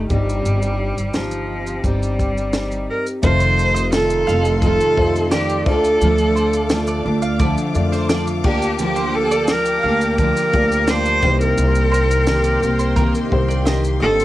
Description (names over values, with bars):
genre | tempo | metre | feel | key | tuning
acoustic pop | 86 BPM | 4/4 | straight | unclear | A4 = 440 Hz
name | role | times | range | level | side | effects
bright cello | melody | 0.0-14.2 s | F3 to C5 | -19 LUFS | right 1 dB | cassette tape
fingerpicked steel-string acoustic guitar | accompaniment | 0.0-14.2 s | F2 to G4 | -23 LUFS | equal | double-tracked left and right, cassette tape
upright bass | bass | 0.0-14.2 s | F1 to F2 | -21 LUFS | equal | none
compact cocktail drum kit | drums | 0.1-14.2 s | crash cymbal, kick drum, shaker, snare drum | -22 LUFS | equal | cassette tape
dark upright piano | accompaniment | 3.2-14.2 s | A3 to D5 | -28 LUFS | left 3 dB | cassette tape
warm studio string section | sustained chords | 3.2-14.2 s | Bb3 to D6 | -29 LUFS | left 2 dB | cassette tape
mandolin | arpeggios | 3.4-14.2 s | Bb4 to F5 | -28 LUFS | right 5 dB | cassette tape
room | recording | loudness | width
light reverb | home recording on cassette | -15 LUFS | side -15 dB against mid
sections
0.0-3.2 A section; 3.2-14.2 B section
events
none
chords
0.1 Cm/G; 3.2 F7; 5.7 Dm; 8.4 Gm7/D; 11.2 Cm7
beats
| 0.45 1.15 1.84 2.54 | 3.23 3.93 4.62 5.32 | 6.01 6.71 7.41 8.10 | 8.80 9.49 10.19 10.88 | 11.58 12.27 12.97 13.66